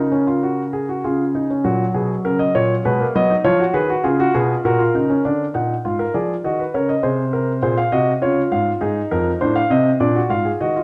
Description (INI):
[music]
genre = classical, baroque-style 3-part fugue for grand piano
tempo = 100 BPM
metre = 3/4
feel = straight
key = F# major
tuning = A4 = 440 Hz
[part]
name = dark concert grand piano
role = solo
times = 0.0-10.8 s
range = F2 to F#5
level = -19 LUFS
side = equal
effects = none
[sound]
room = wet stone room reverb, RT60 1.3 s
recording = none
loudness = -19 LUFS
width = mono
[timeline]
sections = 0.0-1.7 A section; 1.7-5.2 B section; 5.2-10.8 A section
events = none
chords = 0.0 C#sus4; 1.0 C#; 1.7 F#/A#; 2.9 G#m/B; 3.5 C#7; 4.6 F#/A#; 5.2 A#7; 6.4 D#m; 7.0 G#7/B#; 8.2 C#; 8.8 Fm7; 9.4 F7/A; 10.0 Bb7